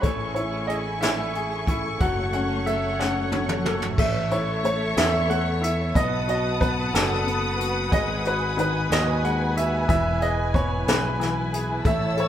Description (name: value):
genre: six-eight pop ballad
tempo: 61 BPM (dotted quarters)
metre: 6/8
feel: straight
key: E major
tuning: A4 = 441 Hz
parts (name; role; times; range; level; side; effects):
- clear baby grand piano; melody; 0.0-12.3 s; A4 to F#5; -27 LUFS; right 1 dB; none
- clear upright piano; accompaniment; 0.0-12.3 s; D#3 to C#5; -29 LUFS; left 3 dB; none
- warm studio string section; sustained chords; 0.0-12.3 s; A3 to E6; -29 LUFS; left 1 dB; none
- direct-recorded clean electric guitar; arpeggios; 0.0-4.0 s; F#2 to A4; -36 LUFS; right 6 dB; none
- fretless electric bass; bass; 0.0-12.3 s; E1 to E2; -28 LUFS; equal; none
- jazz brush drum kit; drums; 0.0-12.3 s; crash cymbal, hi-hat, kick drum, snare drum, toms; -26 LUFS; equal; none
room: moderate large studio reverb, RT60 1.4 s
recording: band playing live in one room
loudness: -21 LUFS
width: side -10 dB against mid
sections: 0.0-4.0 A section; 4.0-12.3 B section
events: drum fill 3.0-4.0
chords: 0.0 Amaj7; 2.0 F#m; 4.0 A; 6.0 B7; 7.9 G#m7; 9.9 E